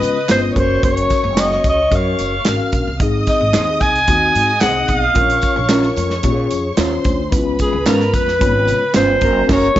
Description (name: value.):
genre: uptempo 1960s-style soul.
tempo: 111 BPM.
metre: 4/4.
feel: straight.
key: unclear.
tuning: A4 = 440 Hz.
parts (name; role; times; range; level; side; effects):
breathy alto saxophone; melody; 0.0-9.8 s; Ab4 to Ab5; -16 LUFS; equal; slapback echo.
warm studio violin section; second line; 0.0-9.8 s; Bb4 to F6; -25 LUFS; equal; none.
mellow tine electric piano; accompaniment; 0.0-9.8 s; Ab3 to Db5; -21 LUFS; left 4 dB; medium stereo tremolo.
upright bass; bass; 0.0-9.8 s; Gb1 to Db3; -22 LUFS; equal; none.
natural country drum kit; drums; 0.0-9.8 s; crash cymbal, hi-hat, kick drum, snare drum; -20 LUFS; equal; none.
tambourine and handclaps; percussion; 0.0-9.3 s; none; -30 LUFS; right 3 dB; none.
electric guitar through a small old amp; stabs; 3.5-9.8 s; Db4 to C5; -21 LUFS; right 5 dB; none.
room: light reverb, studio reverb.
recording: nothing above 7.7 kHz.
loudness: -13 LUFS.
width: side -13 dB against mid.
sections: 0.0-9.8 A section.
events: band accent 9.5-9.8.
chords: 0.0 Db7; 0.6 Gb; 3.0 Ab; 5.2 Bbm; 7.3 Db7; 9.2 Gb.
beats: 0.29 | 0.83 1.38 1.92 2.46 | 3.00 3.54 4.08 4.62 | 5.16 5.70 6.25 6.79 | 7.33 7.87 8.41 8.95 | 9.49.